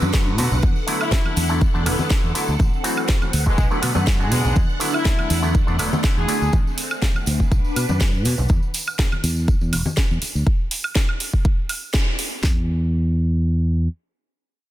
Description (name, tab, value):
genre	filtered disco house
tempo	122 BPM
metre	4/4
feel	swing 54% on 16ths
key	unclear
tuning	A4 = 440 Hz
part	auto-wah clav	accompaniment	0.0-6.5 s	D3 to B4	-27 LUFS	equal	overdrive, phaser, sidechain pumping
part	phased string machine	sustained chords	0.0-8.5 s	A3 to F#5	-28 LUFS	equal	ensemble chorus, phaser, vintage 12-bit sampler grit, sidechain pumping
part	fingered electric bass	bass	0.0-13.9 s	E1 to B2	-21 LUFS	equal	sidechain pumping
part	tambourine and congas	percussion	0.0-10.4 s	none	-29 LUFS	left 2 dB	sidechain pumping on perc
part	house drum kit	drums	0.1-12.6 s	kick drum, snare drum	-19 LUFS	equal	none
part	house drum kit	drums	0.1-12.3 s	hi-hat, snare drum, woodblock	-26 LUFS	right 2 dB	sidechain pumping on hats, sidechain pumping on perc
part	bright horn section	melody	1.0-6.5 s	G#3 to G#4	-29 LUFS	left 2 dB	sidechain pumping, dub echo
room	digital ambience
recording	dense, heavily limited modern master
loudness	-18 LUFS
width	side -14 dB against mid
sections	0.0-12.4 A section; 12.4-14.7 B section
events	drop 0.0-12.4; band accent 11.9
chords	0.0 D6; 0.6 E9sus4; 2.6 Am6; 3.3 D6; 4.6 E9sus4; 6.5 Am6; 7.3 D6; 8.5 N.C.